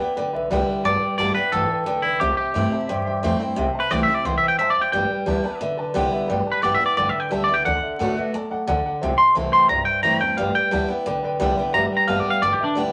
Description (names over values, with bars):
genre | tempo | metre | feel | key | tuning
rock | 176 BPM | 4/4 | straight | G major | A4 = 440 Hz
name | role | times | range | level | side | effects
clear upright piano | accompaniment | 0.0-12.9 s | A4 to A5 | -29 LUFS | equal | none
picked steel-string acoustic guitar | accompaniment | 0.0-12.9 s | G2 to F#4 | -28 LUFS | equal | none
upright bass | bass | 0.0-12.9 s | G1 to A2 | -32 LUFS | equal | none
twangy electric guitar | melody | 0.9-12.8 s | D4 to C6 | -22 LUFS | equal | none
room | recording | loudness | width
wet studio reverb, RT60 0.5 s | vinyl crackle | -21 LUFS | mono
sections
0.0-12.9 A section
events
clean electric guitar solo 0.0-12.9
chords
0.0 G6; 2.2 C6; 4.9 G6; 7.7 D6; 9.0 C6; 10.4 G6